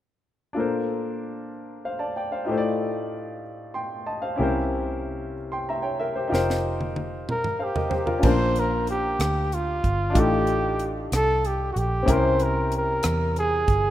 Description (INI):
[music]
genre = slow gospel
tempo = 63 BPM (dotted quarters)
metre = 6/8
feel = straight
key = Bb major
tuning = A4 = 440 Hz
[part]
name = clear grand piano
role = accompaniment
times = 0.5-13.9 s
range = A2 to C6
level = -26 LUFS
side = left 2 dB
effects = none
[part]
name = vintage muted fingered electric bass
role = bass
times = 4.4-13.9 s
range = F1 to E2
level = -27 LUFS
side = right 1 dB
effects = none
[part]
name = tight funk drum kit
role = drums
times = 6.3-13.8 s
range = crash cymbal, hi-hat, kick drum, rim click, snare drum, toms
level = -27 LUFS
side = right 1 dB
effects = none
[part]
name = warm trumpet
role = melody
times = 7.3-13.9 s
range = F4 to C5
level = -25 LUFS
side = equal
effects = slapback echo
[sound]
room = moderate plate reverb, RT60 2.4 s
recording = rough home demo mix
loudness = -22 LUFS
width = side -13 dB against mid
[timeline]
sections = 0.6-8.2 A section; 8.2-13.9 B section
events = drum fill 6.3-8.2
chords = 0.6 Bbmaj9; 2.5 F13/A; 4.4 C7b9; 6.3 F9sus4; 8.2 Bbmaj9; 10.2 F13/A; 12.1 C7b9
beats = | 0.57 1.53 | 2.48 3.44 | 4.40 5.36 | 6.32 7.28 | 8.24 9.20 | 10.15 11.11 | 12.07 13.03